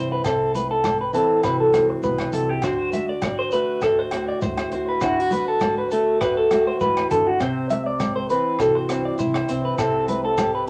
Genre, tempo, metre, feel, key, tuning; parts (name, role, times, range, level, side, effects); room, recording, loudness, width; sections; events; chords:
highlife guitar band; 101 BPM; 4/4; swing 53% on 16ths; A4 = 440 Hz
fingerpicked steel-string acoustic guitar; accompaniment; 0.0-10.7 s; G2 to G4; -28 LUFS; equal
electric guitar through a small old amp; arpeggios; 0.0-10.7 s; F#4 to E5; -23 LUFS; equal; phaser
upright bass; bass; 0.0-10.7 s; C2 to G2; -36 LUFS; equal
agogo bells; percussion; 0.2-10.5 s; -37 LUFS; equal
shekere; percussion; 0.2-10.5 s; -39 LUFS; equal
crunchy breakbeat drum kit; drums; 0.3-10.7 s; hi-hat, kick drum, rim click; -35 LUFS; equal
congas; percussion; 0.3-10.5 s; -34 LUFS; equal
wet studio ambience, RT60 0.5 s; -21 LUFS; mono
0.0-10.7 A section
0.0 C; 2.6 D7; 7.4 C